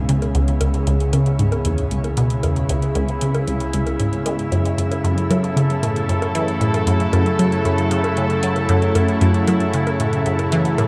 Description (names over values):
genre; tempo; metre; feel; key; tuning
ambient, sequencer-driven space music; 115 BPM; 4/4; straight; unclear; A4 = 439 Hz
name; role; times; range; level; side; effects
evolving wavetable pad; sustained chords; 0.0-10.9 s; C#3 to A4; -24 LUFS; equal; chorus, built-in reverb
analog drone; bass; 0.0-10.9 s; C#2 to F#2; -29 LUFS; equal; chorus
resonant blip pluck; riff; 0.1-10.9 s; C#2 to G#3; -22 LUFS; equal; phaser, analog delay
electronic hi-hat and bongos; percussion; 0.1-10.9 s; none; -32 LUFS; equal; analog delay
room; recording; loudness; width
moderate shimmer reverb, RT60 6.6 s; none; -19 LUFS; mono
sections
0.0-10.9 A section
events
none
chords
0.0 C#m7; 4.5 F#m7